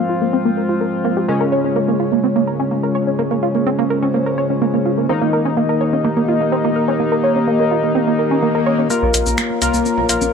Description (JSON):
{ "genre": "melodic techno", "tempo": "126 BPM", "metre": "4/4", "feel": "straight", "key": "Bb dorian", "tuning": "A4 = 440 Hz", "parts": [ { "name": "dark analog pad", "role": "sustained chords", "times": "0.0-10.3 s", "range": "Ab3 to Bb5", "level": "-22 LUFS", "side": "right 1 dB", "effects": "chorus" }, { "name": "tight sequenced synth", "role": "arpeggios", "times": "0.0-10.3 s", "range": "Bb3 to Db5", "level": "-19 LUFS", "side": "right 3 dB", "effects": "chorus, phaser, digital delay" }, { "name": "sync-sweep polysynth", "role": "stabs", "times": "0.0-10.3 s", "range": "Db3 to Bb4", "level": "-18 LUFS", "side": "left 3 dB", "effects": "chorus, cassette tape, digital delay" }, { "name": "swell", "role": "sound effects", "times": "8.1-8.9 s", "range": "none", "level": "-30 LUFS", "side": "right 5 dB", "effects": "none" }, { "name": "techno drum kit", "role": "drums", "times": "8.9-10.3 s", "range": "finger snaps, hi-hat, shaker, toms", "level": "-20 LUFS", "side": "left 2 dB", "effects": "high-pass filter on perc, high-pass filter on hats, high-pass filter on snare, high-pass filter on toms, high-pass filter on room" }, { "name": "dark detuned saw bass", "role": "bass", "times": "9.0-10.3 s", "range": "Bb1 to C2", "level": "-22 LUFS", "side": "equal", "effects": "tube saturation" } ], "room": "light reverb", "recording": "none", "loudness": "-15 LUFS", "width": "side -6 dB against mid", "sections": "0.0-8.9 A section; 8.9-10.3 B section", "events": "filter sweep on synth arpeggio sound 0.0-8.9, 8.9-10.3; filter sweep on analog synth pad 0.0-8.9; swell 8.1-8.9; build-up 8.9-10.3", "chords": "0.0 Fm; 1.3 Db; 5.1 Eb; 8.9 Bbm" }